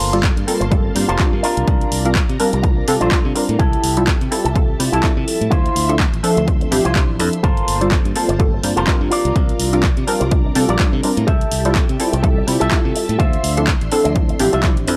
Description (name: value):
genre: filtered disco house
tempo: 125 BPM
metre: 4/4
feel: swing 56% on 16ths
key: G dorian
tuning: A4 = 440 Hz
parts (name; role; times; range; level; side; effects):
- string machine, full ensemble; sustained chords; 0.0-15.0 s; F3 to C6; -32 LUFS; equal; ensemble chorus, vintage 12-bit sampler grit, sidechain pumping, low-pass filter
- electric guitar with an envelope filter; riff; 0.0-14.9 s; D4 to E5; -24 LUFS; equal; vintage 12-bit sampler grit, sidechain pumping, low-pass filter
- modern bright fingered electric bass; bass; 0.0-15.0 s; F1 to C3; -24 LUFS; equal; sidechain pumping, low-pass filter
- punchy analog drum machine; drums; 0.0-15.0 s; handclaps, hi-hat; -26 LUFS; equal; sidechain pumping on hats, sidechain pumping on cymbals
- funky polysynth comp; accompaniment; 0.1-15.0 s; F3 to E5; -22 LUFS; equal; chorus, phaser, sidechain pumping, low-pass filter
- electronic kick drum; drums; 0.2-14.7 s; none; -20 LUFS; equal; none
room: digital ambience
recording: dry, gritty hardware recording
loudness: -17 LUFS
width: mono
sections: 0.0-15.0 A section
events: none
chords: 0.0 Gm11; 1.4 C9sus4; 3.6 Fmaj9/C; 5.5 Dm9; 7.4 Gm11; 9.1 C9sus4; 11.3 Fmaj9/C; 13.2 Dm9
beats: 0.24 0.72 1.20 | 1.68 2.16 2.64 3.12 | 3.60 4.08 4.56 5.04 | 5.52 6.00 6.48 6.96 | 7.44 7.92 8.40 8.88 | 9.36 9.84 10.32 10.80 | 11.28 11.76 12.24 12.72 | 13.20 13.68 14.16 14.64